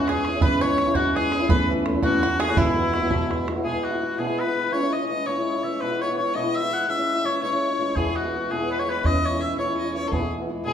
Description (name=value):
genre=celtic folk, Celtic jig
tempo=111 BPM (dotted quarters)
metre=6/8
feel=straight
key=E major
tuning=A4 = 444 Hz
part: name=warm oboe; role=melody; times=0.0-10.7 s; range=E4 to F#5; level=-25 LUFS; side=left 2 dB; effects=none
part: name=bluegrass banjo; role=second line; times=0.0-3.4 s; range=E4 to C#5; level=-31 LUFS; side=right 4 dB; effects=none
part: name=rich fiddle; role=second line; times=0.0-10.7 s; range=E4 to E5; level=-32 LUFS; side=left 2 dB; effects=none
part: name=fingerpicked old ladder-braced acoustic guitar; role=accompaniment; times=0.0-10.7 s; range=E2 to E4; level=-25 LUFS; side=equal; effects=none
part: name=upright bass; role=bass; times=0.0-3.6, 8.0-10.7 s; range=E2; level=-29 LUFS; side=right 1 dB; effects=none
part: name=bodhran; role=percussion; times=0.1-3.6 s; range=none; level=-27 LUFS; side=right 2 dB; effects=none
room=wet recital hall reverb, RT60 1.5 s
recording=minimal, uncompressed stereo recording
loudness=-21 LUFS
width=side -8 dB against mid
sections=0.0-3.6 A section; 3.6-10.7 B section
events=none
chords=0.0 C#m/E; 1.5 A/E; 2.6 Eadd9; 3.6 E; 4.7 C#m/E; 5.8 E; 6.9 C#m/E; 8.0 E; 9.0 C#m/E; 10.1 E